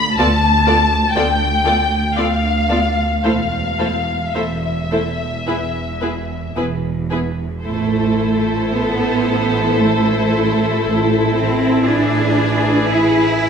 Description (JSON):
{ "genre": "classical, slow romantic movement for string orchestra", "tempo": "53-63 BPM", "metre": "4/4", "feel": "rubato", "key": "A minor", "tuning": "A4 = 440 Hz", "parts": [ { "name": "rich studio violin section", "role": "melody", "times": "0.0-13.5 s", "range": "B4 to B5", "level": "-20 LUFS", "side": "left 3 dB", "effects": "none" }, { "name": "rich symphonic cello section", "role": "bass", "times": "0.0-13.5 s", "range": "D2 to E4", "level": "-20 LUFS", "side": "right 2 dB", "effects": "none" }, { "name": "warm symphonic double bass section", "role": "bass", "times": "0.0-13.5 s", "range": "E1 to D2", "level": "-22 LUFS", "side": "right 3 dB", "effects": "none" }, { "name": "rich symphonic violin section", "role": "second line", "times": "0.2-13.5 s", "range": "G#4 to D5", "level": "-22 LUFS", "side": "left 3 dB", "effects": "none" }, { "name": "rich studio viola section", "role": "accompaniment", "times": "0.2-13.5 s", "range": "A3 to F4", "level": "-23 LUFS", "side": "equal", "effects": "none" } ], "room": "moderate scoring stage reverb, RT60 1.5 s", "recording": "minimal, uncompressed stereo recording", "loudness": "-15 LUFS", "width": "side -7 dB against mid", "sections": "0.0-7.7 A section; 7.7-13.5 B section", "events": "none", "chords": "0.0 Bm7b5/D; 3.2 A5/E; 5.5 E5; 7.7 Am; 11.9 E7/A" }